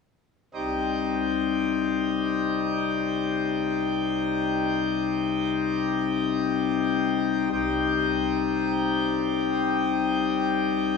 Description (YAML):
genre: classical, chorale-style piece for pipe organ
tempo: free time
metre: none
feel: none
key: C minor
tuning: A4 = 440 Hz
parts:
  - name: pipe organ, plenum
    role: solo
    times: 0.5-11.0 s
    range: C2 to G4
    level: -23 LUFS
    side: left 4 dB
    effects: none
room: wet church reverb, RT60 3.2 s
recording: studio reverb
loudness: -23 LUFS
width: side -4 dB against mid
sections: 0.5-11.0 A section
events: none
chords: 0.5 Cm